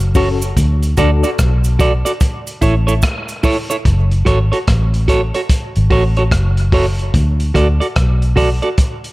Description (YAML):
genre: dub reggae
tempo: 73 BPM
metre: 4/4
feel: swing 63% on 16ths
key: unclear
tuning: A4 = 441 Hz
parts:
  - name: vintage muted fingered electric bass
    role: bass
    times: 0.0-8.6 s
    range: F#1 to D2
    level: -14 LUFS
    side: equal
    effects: none
  - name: crunchy breakbeat drum kit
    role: drums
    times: 0.0-9.1 s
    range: hi-hat, kick drum, rim click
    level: -17 LUFS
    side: equal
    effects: none
  - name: cabasa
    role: percussion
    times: 0.0-3.8 s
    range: none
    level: -29 LUFS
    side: right 8 dB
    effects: none
  - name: clean electric guitar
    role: accompaniment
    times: 0.2-8.7 s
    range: E4 to D5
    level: -19 LUFS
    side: right 2 dB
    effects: dub echo
  - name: reed electric piano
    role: stabs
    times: 0.2-1.2 s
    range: C#4 to A4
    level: -23 LUFS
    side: left 6 dB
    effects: fast tremolo, dub echo
room: light reverb, studio reverb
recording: none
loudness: -12 LUFS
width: side -20 dB against mid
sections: 0.0-9.1 A section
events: part muted 3.9-9.1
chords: 0.0 F#m; 0.6 D; 2.2 A; 3.9 F#m; 7.1 D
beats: | 0.56 1.39 2.21 3.03 | 3.85 4.67 5.49 6.31 | 7.14 7.96 8.78